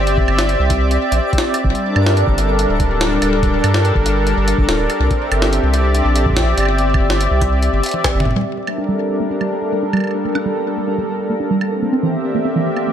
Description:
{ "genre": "IDM", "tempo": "143 BPM", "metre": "4/4", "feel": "straight", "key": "unclear", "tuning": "A4 = 440 Hz", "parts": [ { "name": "warm analog pad", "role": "sustained chords", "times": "0.0-12.9 s", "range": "G3 to E5", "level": "-18 LUFS", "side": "equal", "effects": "chorus, tremolo" }, { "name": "round analog bass", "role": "bass", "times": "0.0-8.3 s", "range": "D1 to G2", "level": "-17 LUFS", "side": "equal", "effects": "none" }, { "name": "twinkling granular texture", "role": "texture", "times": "0.0-12.9 s", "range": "Bb3 to D5", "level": "-28 LUFS", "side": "right 2 dB", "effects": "built-in reverb" }, { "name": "jungle sampler-style drum kit", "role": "drums", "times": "0.1-12.8 s", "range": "hi-hat, snare drum, toms, woodblock", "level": "-22 LUFS", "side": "left 1 dB", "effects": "ping-pong delay" }, { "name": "electronic kick drum", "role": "drums", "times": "0.2-8.1 s", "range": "none", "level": "-19 LUFS", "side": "equal", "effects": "none" }, { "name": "warbly dusty pluck", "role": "arpeggios", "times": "8.4-12.9 s", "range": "E3 to Bb4", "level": "-21 LUFS", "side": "right 2 dB", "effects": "chorus, ping-pong delay" } ], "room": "moderate plate reverb, RT60 1.3 s", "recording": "dreamy mix soaked in reverb", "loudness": "-14 LUFS", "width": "side -9 dB against mid", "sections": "0.0-8.4 A section; 8.4-12.9 B section", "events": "drum fill 7.9-8.4", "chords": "0.0 C; 1.6 Gmadd9; 11.7 C7" }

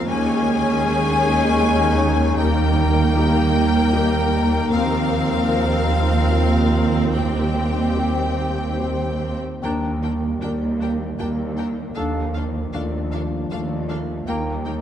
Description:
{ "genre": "cinematic, emotional film score for orchestra", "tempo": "72-79 BPM", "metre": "3/4", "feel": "rubato", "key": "unclear", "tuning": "A4 = 439 Hz", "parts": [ { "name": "warm studio violin section", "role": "melody", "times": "0.0-14.7 s", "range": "F5 to Ab5", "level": "-29 LUFS", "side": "left 4 dB", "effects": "none" }, { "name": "dark symphonic violin section", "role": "second line", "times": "0.0-14.7 s", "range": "G4 to Bb4", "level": "-31 LUFS", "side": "left 4 dB", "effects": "none" }, { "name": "clear grand piano", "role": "accompaniment", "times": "0.0-14.8 s", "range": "Eb2 to D5", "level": "-26 LUFS", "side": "left 2 dB", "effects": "none" }, { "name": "rich symphonic viola section", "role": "accompaniment", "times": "0.0-14.7 s", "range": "Bb3 to D4", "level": "-29 LUFS", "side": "right 1 dB", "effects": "none" }, { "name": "mellow French horn section", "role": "sustained chords", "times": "0.0-14.8 s", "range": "F3 to Eb4", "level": "-29 LUFS", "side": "left 4 dB", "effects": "none" }, { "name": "warm studio double bass section", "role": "bass", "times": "0.0-14.8 s", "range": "Eb2", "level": "-23 LUFS", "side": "right 3 dB", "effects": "none" }, { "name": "warm symphonic cello section", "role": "bass", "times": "0.0-14.8 s", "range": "Eb2", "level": "-26 LUFS", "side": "right 3 dB", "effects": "none" }, { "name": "dark cor anglais", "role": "second line", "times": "0.1-14.6 s", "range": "G4 to Db5", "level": "-31 LUFS", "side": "right 1 dB", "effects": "none" }, { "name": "hollow concert flute", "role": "second line", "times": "0.1-14.6 s", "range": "F5 to Ab5", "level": "-28 LUFS", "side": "left 4 dB", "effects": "none" }, { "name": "warm clarinet", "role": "second line", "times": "0.1-14.6 s", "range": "Bb3 to Eb4", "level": "-29 LUFS", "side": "left 2 dB", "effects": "none" } ], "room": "wet scoring stage reverb, RT60 1.9 s", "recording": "dark, warm production", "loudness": "-18 LUFS", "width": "side -10 dB against mid", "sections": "0.0-9.6 A section; 9.6-14.8 A section", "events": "none", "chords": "0.1 Dbsus2/Eb; 2.4 Eb; 4.7 Fsus4/Eb; 7.1 Cm/Eb; 9.6 Gm/Eb; 12.0 Dm/Eb; 14.3 Eb" }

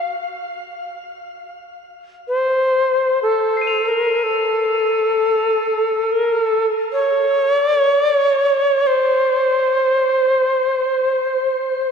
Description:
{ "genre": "world meditative, free-time meditation music", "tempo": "free time", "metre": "none", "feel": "none", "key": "unclear", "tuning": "A4 = 440 Hz", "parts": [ { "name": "reedy Native American-style cedar flute", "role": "melody", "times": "0.0-11.9 s", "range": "A4 to Db5", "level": "-16 LUFS", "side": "equal", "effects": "shimmer reverb" }, { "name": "crotales", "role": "texture", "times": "3.6-10.9 s", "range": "C7 to F7", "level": "-27 LUFS", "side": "left 4 dB", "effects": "shimmer reverb" } ], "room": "wet huge ambient reverb, RT60 6.6 s", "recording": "dark, warm production", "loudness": "-15 LUFS", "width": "side -6 dB against mid", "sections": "0.0-11.9 A section", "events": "none", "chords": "none" }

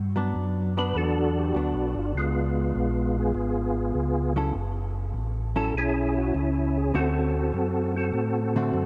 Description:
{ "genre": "soul jazz organ trio", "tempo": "100 BPM", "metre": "4/4", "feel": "swing 69% on 8ths", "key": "unclear", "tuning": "A4 = 440 Hz", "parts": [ { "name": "mellow tonewheel organ", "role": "bass", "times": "0.0-8.9 s", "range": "F#1 to A2", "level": "-30 LUFS", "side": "equal", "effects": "chorus vibrato, slow rotary speaker" }, { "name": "hollow-body jazz guitar", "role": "accompaniment", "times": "0.2-8.9 s", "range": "D3 to A4", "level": "-35 LUFS", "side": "equal", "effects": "none" }, { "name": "percussive tonewheel organ", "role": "melody", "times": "0.8-8.9 s", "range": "G#3 to B4", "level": "-29 LUFS", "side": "equal", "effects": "slow rotary speaker, chorus vibrato" } ], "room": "moderate cathedral reverb, RT60 6.9 s", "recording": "in a vast, echoing space, nothing above 10.8 kHz", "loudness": "-26 LUFS", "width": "mono", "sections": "0.0-8.9 A section", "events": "none", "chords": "0.0 Gmaj7; 2.1 C#7; 4.5 F#m7; 6.9 D7" }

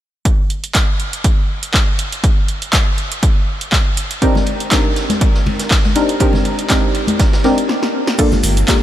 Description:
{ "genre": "deep house", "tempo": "121 BPM", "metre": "4/4", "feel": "swing 55% on 16ths", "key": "unclear", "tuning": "A4 = 440 Hz", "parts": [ { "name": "electronic kick drum", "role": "drums", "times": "0.3-8.8 s", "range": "none", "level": "-15 LUFS", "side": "equal", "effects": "overdrive" }, { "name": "punchy analog drum machine", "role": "drums", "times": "0.3-8.8 s", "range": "crash cymbal, handclaps, hi-hat, snare drum", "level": "-20 LUFS", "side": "right 1 dB", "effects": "overdrive" }, { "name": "deep mellow chord stab", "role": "stabs", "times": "4.2-8.8 s", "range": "Bb3 to Bb4", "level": "-17 LUFS", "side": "equal", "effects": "chorus, sidechain pumping, tape echo" }, { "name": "vintage drum kit", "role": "drums", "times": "4.2-8.8 s", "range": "ride cymbal, snare drum", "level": "-28 LUFS", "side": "equal", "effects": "high-pass filter on cymbals, high-pass filter on snare, high-pass filter on room" }, { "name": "congas", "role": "percussion", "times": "4.3-8.8 s", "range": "none", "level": "-23 LUFS", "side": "left 2 dB", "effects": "none" }, { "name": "egg shaker", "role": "percussion", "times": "8.2-8.8 s", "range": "none", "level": "-29 LUFS", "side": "left 1 dB", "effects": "none" }, { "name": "round analog bass", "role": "bass", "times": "8.4-8.6 s", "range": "G1", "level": "-15 LUFS", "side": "equal", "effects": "tube saturation, sidechain pumping" } ], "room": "light reverb, small room reverb", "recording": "none", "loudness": "-13 LUFS", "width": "side -12 dB against mid", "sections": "0.3-8.2 A section", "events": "drum fill 7.7-8.2; stop 7.7-8.2", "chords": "0.3 N.C.; 4.0 Cm9; 8.2 Gm9" }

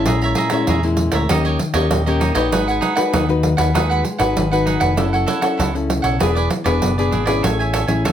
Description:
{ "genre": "samba and choro", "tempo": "98 BPM", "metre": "4/4", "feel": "straight", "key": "E major", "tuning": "A4 = 440 Hz", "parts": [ { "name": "cavaquinho", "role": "accompaniment", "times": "0.0-8.1 s", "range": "D#4 to A#5", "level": "-21 LUFS", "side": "right 4 dB", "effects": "none" }, { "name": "nylon-string guitar", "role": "accompaniment", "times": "0.0-8.1 s", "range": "A#2 to B4", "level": "-20 LUFS", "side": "left 4 dB", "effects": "none" }, { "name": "picked electric bass", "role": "bass", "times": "0.0-8.1 s", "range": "E1 to E2", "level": "-21 LUFS", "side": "equal", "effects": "none" }, { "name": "pandeiro", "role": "percussion", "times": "0.1-8.1 s", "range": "none", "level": "-22 LUFS", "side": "right 3 dB", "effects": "none" } ], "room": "moderate studio reverb, RT60 0.6 s", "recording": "none", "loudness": "-15 LUFS", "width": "side -10 dB against mid", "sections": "0.0-7.4 A section", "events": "none", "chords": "0.1 A#m7b5; 1.3 D#7; 2.5 G#m7; 5.0 F#m7; 6.2 E7; 7.4 Amaj7" }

